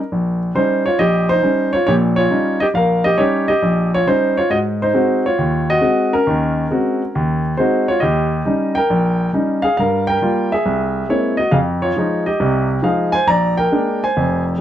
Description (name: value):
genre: jazz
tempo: 137 BPM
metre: 4/4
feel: swing 67% on 8ths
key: Eb mixolydian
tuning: A4 = 442 Hz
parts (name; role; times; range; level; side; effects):
- warm grand piano; solo; 0.0-14.6 s; F1 to Bb5; -14 LUFS; equal; none
room: moderate club reverb, RT60 0.6 s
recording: dark, warm production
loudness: -14 LUFS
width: side -11 dB against mid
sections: 0.0-14.6 A section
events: none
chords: 0.0 Eb7; 4.5 Ab7; 8.0 Eb7; 9.8 Gm7; 10.6 Caug7; 11.5 Fm7; 13.3 Bb7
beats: 0.12 0.56 | 1.00 1.44 1.87 2.31 | 2.75 3.19 3.63 4.06 | 4.50 4.94 5.38 5.82 | 6.26 6.70 7.13 7.57 | 8.01 8.45 8.89 9.32 | 9.76 10.20 10.64 11.08 | 11.52 11.95 12.39 12.83 | 13.27 13.71 14.15 14.58